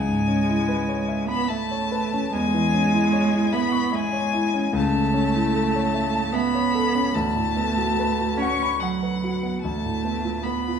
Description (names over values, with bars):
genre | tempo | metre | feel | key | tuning
classical, slow romantic movement for piano trio | 74 BPM | 3/4 | rubato | unclear | A4 = 440 Hz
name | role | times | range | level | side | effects
clear violin | melody | 0.0-10.8 s | F#5 to C#6 | -26 LUFS | left 7 dB | none
rich cello | second line | 0.0-10.8 s | F#3 to C#4 | -24 LUFS | right 6 dB | none
dark concert grand piano | accompaniment | 0.0-10.8 s | C#2 to C#6 | -25 LUFS | left 2 dB | none
room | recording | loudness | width
wet recital hall reverb, RT60 1.4 s | studio reverb | -20 LUFS | side -7 dB against mid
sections
0.0-10.8 A section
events
none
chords
0.0 C#m7; 2.3 C#m/E; 4.7 A/C#; 7.1 Bm7/D; 9.6 Bm7b5/D